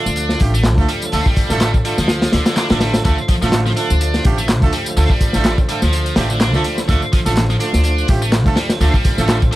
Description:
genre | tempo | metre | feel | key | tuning
breakbeat, breaks | 125 BPM | 4/4 | swing 55% on 16ths | D minor | A4 = 444 Hz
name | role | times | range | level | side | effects
percussive tonewheel organ | sustained chords | 0.0-9.6 s | D3 to C5 | -26 LUFS | equal | overdrive, chorus vibrato, slow rotary speaker, sidechain pumping
high-gain distorted guitar | riff | 0.0-9.6 s | D3 to D4 | -22 LUFS | equal | distortion, digital delay
warm horn section | stabs | 0.0-9.6 s | A3 to A4 | -24 LUFS | right 4 dB | digital delay
upright bass | bass | 0.1-9.5 s | A1 to D2 | -18 LUFS | equal | none
punchy analog drum machine | drums | 0.1-9.6 s | handclaps, hi-hat, tambourine | -28 LUFS | left 1 dB | none
crunchy breakbeat drum kit | drums | 0.2-9.6 s | hi-hat, kick drum, snare drum | -17 LUFS | equal | none
room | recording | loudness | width
little or no reverb | vinyl crackle | -13 LUFS | side -16 dB against mid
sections
0.0-9.6 A section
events
none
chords
0.0 Dm

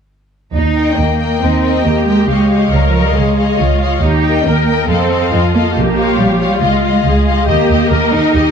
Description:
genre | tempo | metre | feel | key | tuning
cinematic, heroic adventure film score | 138 BPM | 4/4 | straight | Eb mixolydian | A4 = 440 Hz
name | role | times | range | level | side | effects
warm symphonic cello section | bass | 0.5-8.5 s | F3 to Eb4 | -15 LUFS | right 2 dB | none
warm symphonic double bass section | bass | 0.5-8.4 s | Bb1 to F2 | -15 LUFS | right 2 dB | none
warm symphonic violin section | melody | 0.8-8.5 s | Eb5 to G5 | -21 LUFS | left 6 dB | none
warm symphonic violin section | second line | 0.8-8.5 s | F4 to Eb5 | -19 LUFS | left 5 dB | none
warm studio viola section | accompaniment | 1.4-8.5 s | Eb4 to Bb4 | -18 LUFS | left 1 dB | none
room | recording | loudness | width
moderate scoring stage reverb, RT60 1.6 s | dark, warm production, faint mains hum | -11 LUFS | side -7 dB against mid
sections
0.5-8.5 A section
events
none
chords
0.5 Eb; 2.3 Dbadd9; 4.0 Eb; 4.9 F7; 5.8 Bbm; 6.6 Dbadd9; 7.5 Eb

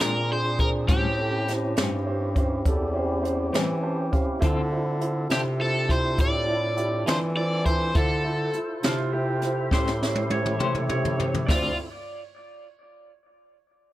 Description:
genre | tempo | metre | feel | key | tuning
slow blues | 68 BPM (dotted quarters) | 12/8 | straight | D minor | A4 = 440 Hz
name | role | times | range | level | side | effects
overdriven semi-hollow guitar | melody | 0.0-11.8 s | F4 to D5 | -28 LUFS | equal | analog delay
semi-hollow electric guitar | accompaniment | 0.0-11.7 s | A2 to B#4 | -31 LUFS | left 4 dB | tremolo
warm upright piano | accompaniment | 0.0-11.8 s | C#4 to A5 | -30 LUFS | right 2 dB | none
tonewheel organ | sustained chords | 0.0-11.9 s | A3 to C5 | -33 LUFS | left 1 dB | slow rotary speaker
clear bass clarinet | bass | 0.0-11.8 s | D2 to E3 | -28 LUFS | equal | none
jazz brush drum kit | drums | 0.0-11.6 s | hi-hat, kick drum, snare drum, toms | -26 LUFS | equal | none
clean lap steel guitar | second line | 8.9-11.7 s | F4 to D5 | -33 LUFS | right 2 dB | plate reverb, analog delay
room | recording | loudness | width
light reverb | none | -22 LUFS | side -15 dB against mid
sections
0.0-11.5 A section; 11.5-13.9 B section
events
upright piano fill 3.5-4.4; drum fill 9.7-11.5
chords
0.0 Bb7; 0.9 A7#9; 4.4 Dm7; 9.7 A7#9; 11.5 Dm7

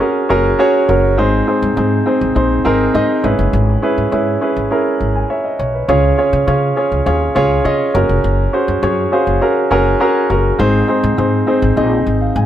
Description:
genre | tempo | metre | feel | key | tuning
1980s-style pop | 102 BPM | 4/4 | straight | unclear | A4 = 440 Hz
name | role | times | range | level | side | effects
warm grand piano | accompaniment | 0.0-12.5 s | Ab2 to Bb5 | -13 LUFS | right 1 dB | none
upright bass | bass | 0.3-12.5 s | F1 to Db3 | -17 LUFS | left 1 dB | none
room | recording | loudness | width
light reverb | none | -12 LUFS | side -11 dB against mid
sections
0.0-12.5 A section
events
grand piano fill 5.0-5.9, 8.8-10.6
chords
0.0 Gbadd9; 1.2 Ab; 3.2 E6; 5.9 Db; 7.9 Gbadd9; 10.6 Ab

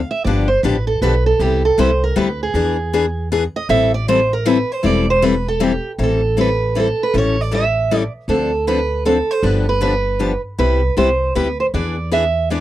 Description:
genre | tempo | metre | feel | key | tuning
acoustic string swing (jazz manouche) | 157 BPM | 3/4 | swing 63% on 8ths | A minor | A4 = 440 Hz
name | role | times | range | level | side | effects
picked steel-string acoustic guitar | melody | 0.0-12.6 s | G4 to F5 | -18 LUFS | right 3 dB | none
upright bass | bass | 0.0-12.6 s | E1 to E2 | -20 LUFS | equal | none
picked steel-string acoustic guitar | accompaniment | 0.3-12.6 s | C3 to A4 | -18 LUFS | left 5 dB | none
room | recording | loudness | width
light reverb | dry, close 1970s-style studio recording | -15 LUFS | side -13 dB against mid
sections
0.0-6.0 A section; 6.0-12.6 B section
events
steel-string acoustic guitar solo 0.0-6.0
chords
0.2 G7; 1.4 Cmaj7; 2.5 E7; 3.7 Am7; 7.1 A7; 8.3 Dm7; 9.4 G7; 10.6 Cmaj7; 11.7 E7

